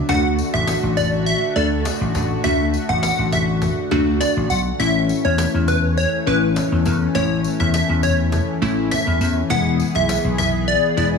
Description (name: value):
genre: dance-pop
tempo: 102 BPM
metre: 4/4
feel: straight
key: unclear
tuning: A4 = 439 Hz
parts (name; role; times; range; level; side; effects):
- chorused pulse-width pad; sustained chords; 0.0-11.2 s; D3 to G#4; -25 LUFS; left 2 dB; none
- plucky unison lead; melody; 0.1-11.1 s; B4 to F#5; -22 LUFS; equal; phaser, slapback echo, digital delay
- glassy wavetable pluck; accompaniment; 0.1-11.2 s; G#3 to A4; -23 LUFS; left 1 dB; chorus, slapback echo
- vintage slap bass; bass; 0.1-11.2 s; E1 to E2; -21 LUFS; left 2 dB; none
- cajon; drums; 0.1-11.1 s; none; -30 LUFS; left 1 dB; slapback echo
- tambourine; percussion; 0.1-11.1 s; none; -35 LUFS; left 11 dB; none
room: moderate lush hall reverb, RT60 2.1 s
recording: big arena sound, small room ambience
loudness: -16 LUFS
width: side -5 dB against mid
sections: 0.0-11.2 A section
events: kick muted 4.8-5.4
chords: 0.1 D; 4.8 A; 9.5 E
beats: | 0.09 0.68 1.26 1.85 | 2.44 3.03 3.62 4.21 | 4.79 5.38 5.97 6.56 | 7.15 7.74 8.32 8.91 | 9.50 10.09 10.68